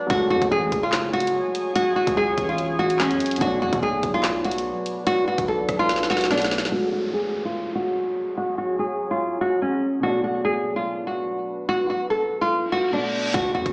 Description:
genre	hip hop, drill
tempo	145 BPM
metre	4/4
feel	half-time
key	F# harmonic minor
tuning	A4 = 436 Hz
part	nylon-string guitar	melody	0.0-13.7 s	C#4 to A4	-22 LUFS	equal	low-pass filter
part	deep dark ambient pad	sustained chords	0.0-13.3 s	F#3 to G#5	-32 LUFS	equal	chorus, built-in reverb, low-pass filter
part	dark concert grand piano	accompaniment	0.1-13.4 s	B2 to D4	-31 LUFS	equal	low-pass filter
part	distorted 808-style bass	bass	0.1-6.7, 13.3-13.7 s	F#1 to B2	-31 LUFS	equal	distortion
part	drill drum kit	drums	0.1-6.8, 13.3-13.7 s	handclaps, hi-hat, kick drum, rim click, snare drum	-26 LUFS	equal	none
part	downlifter, reverse cymbal and impact	sound effects	6.7-13.7 s	none	-34 LUFS	equal	none
room	light reverb, digital ambience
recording	played on a big sound system in a bare room, large studio reverb, small speaker sound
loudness	-20 LUFS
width	side -39 dB against mid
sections	0.0-6.7 A section; 6.7-13.3 B section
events	drum fill 5.9-6.7; filter sweep 6.7-13.3; reverse cymbal 12.7-13.3; impact 13.3-13.7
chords	0.1 F#madd9; 3.4 Bm7; 6.7 F#madd9; 10.0 Bm7

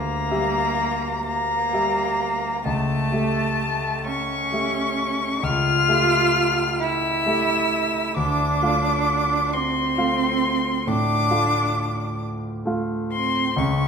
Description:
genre	classical, slow romantic movement for piano trio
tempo	44 BPM (dotted quarters)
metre	12/8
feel	rubato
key	D minor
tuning	A4 = 440 Hz
part	muted violin	melody	0.0-13.9 s	A5 to F6	-23 LUFS	left 4 dB	none
part	muted cello	second line	0.0-13.9 s	A3 to F4	-25 LUFS	right 5 dB	none
part	dark concert grand piano	accompaniment	0.0-13.9 s	C#2 to F5	-25 LUFS	equal	none
room	wet recital hall reverb, RT60 1.4 s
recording	minimal, uncompressed stereo recording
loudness	-20 LUFS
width	side -6 dB against mid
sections	0.0-13.9 A section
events	none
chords	0.0 Em7b5/D; 2.7 A7/C#; 8.2 Dm

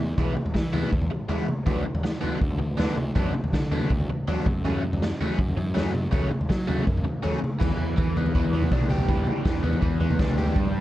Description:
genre	indie rock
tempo	162 BPM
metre	4/4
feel	straight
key	unclear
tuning	A4 = 439 Hz
part	overdriven electric guitar	riff	0.0-10.8 s	C#3 to G4	-29 LUFS	equal	phaser
part	fuzz picked electric bass	bass	0.0-10.8 s	B1 to F#3	-29 LUFS	equal	overdrive
part	raw garage drum kit	drums	0.2-10.7 s	crash cymbal, kick drum, snare drum, toms	-25 LUFS	equal	none
room	light reverb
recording	dark, warm production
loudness	-22 LUFS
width	side -14 dB against mid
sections	0.0-7.6 A section; 7.6-10.8 B section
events	none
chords	0.0 E; 1.7 Bm/D; 4.5 F#m; 7.6 Em7

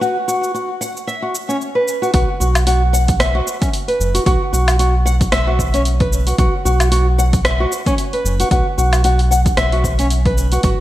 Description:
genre	organic downtempo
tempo	113 BPM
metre	4/4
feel	swing 57% on 16ths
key	unclear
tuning	A4 = 438 Hz
part	nylon-string guitar	arpeggios	0.0-10.8 s	C#4 to F#5	-18 LUFS	equal	digital delay
part	deep house drum kit	drums	0.0-10.8 s	hi-hat, rim click, shaker, woodblock	-22 LUFS	equal	overdrive, studio reverb, gated reverb
part	round analog bass	bass	2.1-10.7 s	F#1 to B1	-16 LUFS	equal	tube saturation, sidechain pumping
part	electronic kick drum	drums	2.1-10.8 s	none	-19 LUFS	equal	overdrive, studio reverb
room	light reverb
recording	bright 1980s-style digital production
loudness	-14 LUFS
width	side -14 dB against mid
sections	0.0-2.1 A section; 2.1-10.8 B section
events	none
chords	0.0 B5

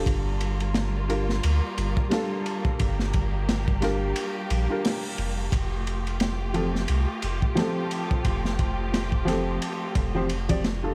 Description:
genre	trip hop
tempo	88 BPM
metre	4/4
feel	swing 57% on 16ths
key	G minor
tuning	A4 = 439 Hz
part	felt-muted upright piano	accompaniment	0.0-10.9 s	F3 to D5	-32 LUFS	equal	harmonic tremolo, tape echo
part	muted studio string section	sustained chords	0.0-10.9 s	G3 to G4	-36 LUFS	equal	none
part	soft dub sub bass	bass	0.0-10.9 s	F1 to D2	-30 LUFS	equal	none
part	crunchy breakbeat drum kit	drums	0.1-10.8 s	hi-hat, kick drum, ride cymbal, snare drum	-30 LUFS	equal	none
room	small room ambience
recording	vinyl crackle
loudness	-26 LUFS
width	mono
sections	0.0-10.9 A section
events	none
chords	0.1 Gm7; 5.5 Fadd9

